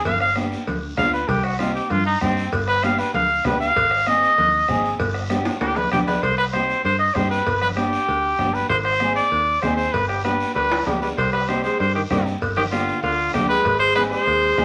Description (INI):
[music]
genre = latin, cumbia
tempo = 194 BPM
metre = 4/4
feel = straight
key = C harmonic minor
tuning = A4 = 436 Hz
[part]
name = warm trumpet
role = melody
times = 0.0-14.6 s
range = C4 to F5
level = -22 LUFS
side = equal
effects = none
[part]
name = fingered electric bass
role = bass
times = 0.1-14.6 s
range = G1 to G2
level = -30 LUFS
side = equal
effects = none
[part]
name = bombo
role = percussion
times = 0.1-14.6 s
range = none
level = -34 LUFS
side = equal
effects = none
[part]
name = congas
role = percussion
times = 0.1-14.6 s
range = none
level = -33 LUFS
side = equal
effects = none
[part]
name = cowbell and timbales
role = percussion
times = 0.1-14.6 s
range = none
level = -30 LUFS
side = equal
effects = none
[part]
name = guiro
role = percussion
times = 0.1-14.6 s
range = none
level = -40 LUFS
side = equal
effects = none
[part]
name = nylon-string guitar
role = accompaniment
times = 0.4-14.6 s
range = B3 to Ab4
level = -30 LUFS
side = equal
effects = none
[part]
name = breathy tenor saxophone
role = second line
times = 10.5-14.6 s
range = D3 to Ab3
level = -28 LUFS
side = equal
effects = none
[sound]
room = wet studio reverb, RT60 0.7 s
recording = vinyl crackle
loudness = -20 LUFS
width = mono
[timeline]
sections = 0.0-6.2 A section; 6.2-14.6 B section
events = trumpet solo 0.0-6.2; drum fill 5.3-6.2, 10.7-11.2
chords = 0.1 G7; 1.3 Cm; 2.5 G7; 3.8 Ab; 5.0 G; 6.2 Cm; 7.5 G; 8.7 Ab; 9.9 G; 11.2 Cm; 12.4 G7; 13.7 Ab